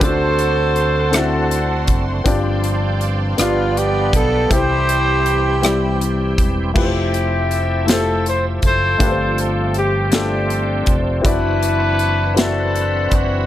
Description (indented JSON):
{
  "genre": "slow gospel",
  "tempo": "53 BPM (dotted quarters)",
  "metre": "6/8",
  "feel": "straight",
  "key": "unclear",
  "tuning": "A4 = 441 Hz",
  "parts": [
    { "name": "growling tenor saxophone", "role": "melody", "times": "0.0-6.4 s", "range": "F4 to C5", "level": "-22 LUFS", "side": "right 4 dB", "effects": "tape echo" },
    { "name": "warm horn section", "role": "melody", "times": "0.0-13.5 s", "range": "B3 to C5", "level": "-20 LUFS", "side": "left 2 dB", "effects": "none" },
    { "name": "warm baby grand piano", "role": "accompaniment", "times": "0.0-13.5 s", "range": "G2 to E5", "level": "-23 LUFS", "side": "left 3 dB", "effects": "none" },
    { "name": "bright tonewheel organ", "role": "sustained chords", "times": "0.0-13.5 s", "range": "D3 to E5", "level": "-27 LUFS", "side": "right 4 dB", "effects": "slow rotary speaker, overdrive, chorus vibrato" },
    { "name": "warm studio string section", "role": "sustained chords", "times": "0.0-6.7 s", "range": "C5 to C6", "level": "-31 LUFS", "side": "right 1 dB", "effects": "none" },
    { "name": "fingered electric bass", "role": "bass", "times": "0.0-13.5 s", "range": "E1 to D2", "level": "-21 LUFS", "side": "equal", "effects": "none" },
    { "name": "modern studio drum kit", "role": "drums", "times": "0.0-13.3 s", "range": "crash cymbal, hi-hat, kick drum, rim click, snare drum", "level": "-19 LUFS", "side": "equal", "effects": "none" }
  ],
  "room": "light reverb, small room reverb",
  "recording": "none",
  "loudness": "-15 LUFS",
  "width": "side -12 dB against mid",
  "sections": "0.0-6.8 A section; 6.8-13.5 B section",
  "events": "none",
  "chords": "0.0 D7; 2.3 G7sus4; 3.4 G7; 4.5 Cmaj7; 6.8 Fmaj9; 9.0 G9sus4; 11.3 D13/F#",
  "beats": "| 0.01 1.14 | 2.26 3.38 | 4.51 5.63 | 6.76 7.88 | 9.01 10.13 | 11.25 12.38"
}